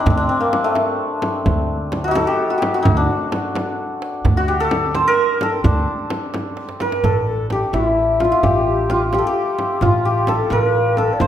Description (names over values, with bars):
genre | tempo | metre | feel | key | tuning
Persian modal ensemble | 86 BPM (dotted quarters) | 6/8 | straight | D dastgah homayun, A dastgah shur from 7.0 s | A4 = 440 Hz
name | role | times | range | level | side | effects
santur | melody | 0.0-11.3 s | A3 to C5 | -18 LUFS | equal | none
upright bass | bass | 0.1-11.3 s | A1 to D2 | -22 LUFS | equal | none
frame drum | percussion | 0.1-11.3 s | none | -25 LUFS | equal | none
tombak | percussion | 0.1-11.3 s | none | -25 LUFS | right 4 dB | none
bright reedy ney | second line | 6.8-11.3 s | E4 to D5 | -23 LUFS | left 4 dB | none
room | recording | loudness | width
wet recital hall reverb, RT60 1.3 s | none | -16 LUFS | side -10 dB against mid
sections
0.0-7.0 A section; 7.0-11.3 B section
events
drum fill 6.6-7.0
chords
none